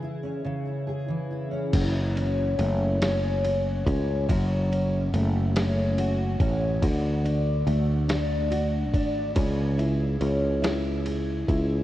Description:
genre	six-eight pop ballad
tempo	47 BPM (dotted quarters)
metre	6/8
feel	straight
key	F# minor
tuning	A4 = 442 Hz
part	fingerpicked steel-string acoustic guitar	accompaniment	0.0-11.8 s	F#2 to G#4	-27 LUFS	equal	double-tracked left and right
part	sustaining fretless electric bass	bass	1.7-11.8 s	F#1 to D2	-25 LUFS	equal	none
part	lo-fi sampler-style drum kit	drums	1.7-11.7 s	crash cymbal, kick drum, ride cymbal, snare drum	-30 LUFS	equal	cassette tape
room	light reverb, digital ambience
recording	home recording on cassette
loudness	-23 LUFS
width	side -14 dB against mid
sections	0.0-1.7 A section; 1.7-11.8 B section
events	none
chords	0.0 C#m; 1.7 F#m; 6.8 D; 9.4 C#m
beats	0.45 | 1.73 3.01 | 4.29 5.55 | 6.82 8.09 | 9.36 10.63

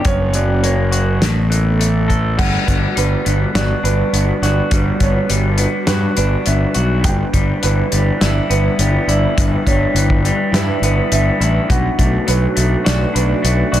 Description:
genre	post-rock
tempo	103 BPM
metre	4/4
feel	straight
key	unclear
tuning	A4 = 441 Hz
part	airy breathy pad	sustained chords	0.0-13.8 s	E3 to B4	-24 LUFS	left 1 dB	chorus
part	electric guitar through a small old amp	arpeggios	0.0-13.8 s	F#2 to A4	-20 LUFS	left 1 dB	spring reverb, slapback echo
part	felt-muted upright piano	arpeggios	0.0-13.8 s	B4 to G5	-24 LUFS	right 6 dB	slapback echo
part	loose indie drum kit	drums	0.0-13.8 s	crash cymbal, hi-hat, kick drum, snare drum	-19 LUFS	left 1 dB	none
part	fuzz fingered electric bass	bass	0.1-13.8 s	F#1 to G2	-16 LUFS	equal	overdrive
room	studio ambience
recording	none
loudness	-13 LUFS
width	side -12 dB against mid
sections	0.0-2.4 A section; 2.4-13.8 B section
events	none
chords	0.1 F#; 1.2 Asus2; 2.4 Gmaj7; 7.0 Em7/G; 11.7 Bm7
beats	| 0.05 0.64 1.22 1.80 | 2.38 2.97 3.55 4.13 | 4.72 5.30 5.88 6.46 | 7.05 7.63 8.21 8.79 | 9.37 9.95 10.54 11.12 | 11.70 12.28 12.86 13.44

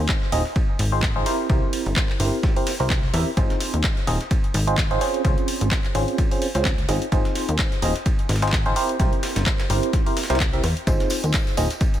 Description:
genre	piano house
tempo	128 BPM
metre	4/4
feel	swing 56% on 16ths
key	Ab major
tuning	A4 = 440 Hz
part	barking FM electric piano	riff	0.0-11.7 s	C4 to E5	-25 LUFS	right 2 dB	chorus, phaser, tremolo, sidechain pumping, low-pass filter, dub echo
part	plucky analog bass	bass	0.0-11.7 s	Eb1 to E2	-23 LUFS	equal	sidechain pumping
part	breakbeat sampler-style drum kit	drums	0.1-11.9 s	hi-hat, ride cymbal, snare drum	-35 LUFS	right 2 dB	overdrive, high-pass filter on snare, sidechain pumping on cymbals, high-pass filter on cymbals, sidechain pumping on hats, high-pass filter on hats, high-pass filter on room
part	electronic kick drum	drums	0.1-11.9 s	none	-22 LUFS	equal	none
part	house drum kit	drums	0.1-12.0 s	handclaps, hi-hat	-28 LUFS	left 1 dB	none
part	tambourine	percussion	10.9-12.0 s	none	-37 LUFS	equal	none
room	little or no reverb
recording	none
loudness	-19 LUFS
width	side -12 dB against mid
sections	0.0-12.0 A section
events	none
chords	0.0 Ab6; 1.3 C7; 3.4 Ab6; 5.0 Dbmaj7; 6.9 Ab6; 8.8 C7; 10.9 Ab6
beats	0.09 0.56 1.03 | 1.50 1.96 2.43 2.90 | 3.37 3.84 4.31 4.78 | 5.25 5.71 6.18 6.65 | 7.12 7.59 8.06 8.53 | 8.99 9.46 9.93 10.40 | 10.87 11.34 11.81

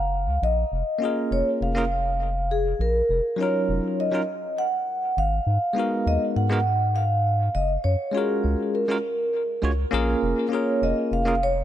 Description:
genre	sunset chillout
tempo	101 BPM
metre	4/4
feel	straight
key	unclear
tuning	A4 = 440 Hz
part	vibraphone with medium mallets	melody	0.0-11.6 s	G#4 to F#5	-25 LUFS	equal	tape echo
part	round analog bass	bass	0.0-11.6 s	E#1 to G#2	-24 LUFS	equal	none
part	barky tine electric piano	accompaniment	1.0-11.3 s	F#3 to C#5	-26 LUFS	moving between left 4 dB and right 2 dB	auto-pan, ping-pong delay
room	moderate plate reverb, RT60 2.6 s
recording	none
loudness	-21 LUFS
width	side -11 dB against mid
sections	0.0-9.9 A section; 9.9-11.6 B section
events	none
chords	0.4 A#m7; 2.8 D#m7; 5.2 G#m7; 7.5 F#maj7; 9.9 A#m7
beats	| 0.42 1.02 1.61 2.20 | 2.80 3.39 3.99 4.58 | 5.17 5.77 6.36 6.96 | 7.55 8.14 8.74 9.33 | 9.93 10.52 11.12

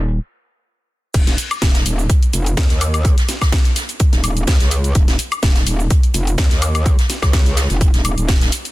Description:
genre	bass house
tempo	126 BPM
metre	4/4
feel	swing 54% on 16ths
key	unclear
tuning	A4 = 440 Hz
part	metallic wobble bass	bass	0.0-8.5 s	Eb1 to Eb2	-18 LUFS	equal	chorus, tube saturation, sidechain pumping
part	jazz brush drum kit	drums	0.1-8.6 s	hi-hat, snare drum	-28 LUFS	right 2 dB	high-pass filter on hats, low-pass filter on hats, soft clipping on snare, high-pass filter on snare, low-pass filter on snare, high-pass filter on room, low-pass filter on room
part	electronic kick drum	drums	1.1-8.4 s	none	-14 LUFS	equal	overdrive
part	house drum kit	drums	1.1-8.7 s	cabasa, crash cymbal, hi-hat, snare drum, woodblock	-22 LUFS	left 1 dB	none
room	little or no reverb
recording	dense, heavily limited modern master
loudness	-14 LUFS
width	side -18 dB against mid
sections	0.0-1.1 A section; 1.1-8.7 B section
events	stop 0.2-1.1; drop 1.1-8.7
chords	none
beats	0.19 0.67 | 1.14 1.62 2.10 2.57 | 3.05 3.52 4.00 4.48 | 4.95 5.43 5.91 6.38 | 6.86 7.33 7.81 8.29

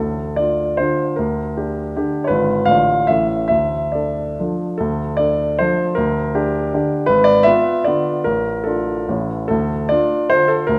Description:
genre	classical, romantic triple-time dance for piano with dotted rhythms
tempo	131-173 BPM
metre	3/4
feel	rubato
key	D minor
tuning	A4 = 444 Hz
part	warm grand piano	solo	0.0-10.8 s	G#1 to F5	-18 LUFS	equal	none
room	moderate recital hall reverb, RT60 1.5 s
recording	none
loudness	-18 LUFS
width	mono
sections	0.0-4.8 A section; 4.8-10.8 A section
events	none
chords	0.0 Dm; 1.2 Gm/D; 2.3 G#dim7; 2.7 Dm/A; 3.1 A; 3.5 Dm; 6.0 Gm/D; 7.1 G#dim7; 8.2 Dm/A; 9.1 A; 9.5 Dm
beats	0.37 0.79 | 1.17 1.57 1.94 | 2.30 2.67 3.08 | 3.50 3.93 4.38 | 4.79 5.19 5.59 | 5.96 6.35 6.73 | 7.09 7.46 7.86 | 8.25 8.66 9.08 | 9.50 9.90 10.32 | 10.68

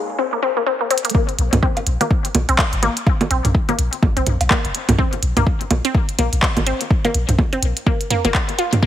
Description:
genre	minimal techno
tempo	125 BPM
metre	4/4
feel	swing 59% on 16ths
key	Bb minor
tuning	A4 = 442 Hz
part	resonant blip pluck	riff	0.2-8.9 s	Bb3 to F4	-22 LUFS	left 2 dB	phaser, sidechain pumping, ping-pong delay
part	minimal click drum kit	drums	0.9-8.8 s	handclaps, hi-hat	-22 LUFS	equal	overdrive, small room ambience
part	electronic kick drum	drums	1.1-8.9 s	none	-18 LUFS	equal	overdrive, small room ambience
part	electronic bongos, toms and cowbell	percussion	1.1-8.9 s	none	-21 LUFS	right 2 dB	small room ambience, ping-pong delay
part	punchy sub bass	bass	1.4-8.3 s	F1 to Bb1	-20 LUFS	equal	sidechain pumping
room	light reverb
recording	heavily compressed radio sound, high-pass filter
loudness	-16 LUFS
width	side -11 dB against mid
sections	0.0-1.1 A section; 1.1-8.9 B section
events	build-up 0.0-1.1; filter sweep 0.0-1.1; drum fill 0.9; drop 1.1-8.9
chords	0.0 Bbm7; 1.1 N.C.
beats	0.19 0.67 | 1.15 1.63 2.11 2.59 | 3.07 3.55 4.03 4.51 | 4.99 5.47 5.95 6.43 | 6.91 7.39 7.87 8.35 | 8.83

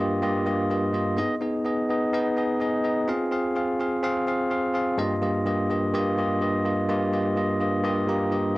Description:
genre	pop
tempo	126 BPM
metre	4/4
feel	straight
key	unclear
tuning	A4 = 442 Hz
part	bell-like tine electric piano	solo	0.0-8.6 s	G2 to Bb5	-22 LUFS	equal	fast stereo tremolo, analog delay
room	moderate small room ambience, RT60 0.5 s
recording	home recording on cassette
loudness	-22 LUFS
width	side -20 dB against mid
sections	0.0-8.6 A section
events	tine electric piano fill 7.8-8.6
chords	0.0 Ebadd9/G; 1.2 Abm; 3.1 Fm; 5.0 Ebadd9/G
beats	0.23 0.70 | 1.18 1.65 2.13 2.61 | 3.08 3.56 4.04 4.51 | 4.99 5.46 5.94 6.42 | 6.89 7.37 7.84 8.32

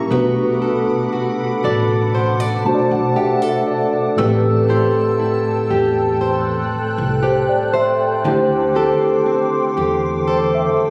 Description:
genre	R&B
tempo	59 BPM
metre	4/4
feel	straight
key	A dorian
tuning	A4 = 440 Hz
part	mellow tine electric piano	accompaniment	0.0-10.9 s	A2 to A5	-21 LUFS	equal	none
part	glassy FM pad	sustained chords	0.0-10.9 s	A4 to F#6	-27 LUFS	equal	ensemble chorus, built-in reverb
part	flamenco guitar	arpeggios	0.0-10.9 s	D3 to D5	-22 LUFS	equal	none
part	upright bass	bass	0.1-10.8 s	A1 to E2	-26 LUFS	equal	none
part	soft synth bell	texture	2.7-10.6 s	A5 to E6	-35 LUFS	equal	none
room	light reverb, studio ambience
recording	recorded on a phone in the room, studio reverb, compression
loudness	-17 LUFS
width	mono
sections	0.0-4.2 A section; 4.2-10.9 B section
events	tine electric piano fill 2.1-4.2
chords	0.1 Bm7; 8.2 D7sus4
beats	| 0.11 1.13 2.15 3.16 | 4.18 5.20 6.21 7.23 | 8.25 9.27 10.28

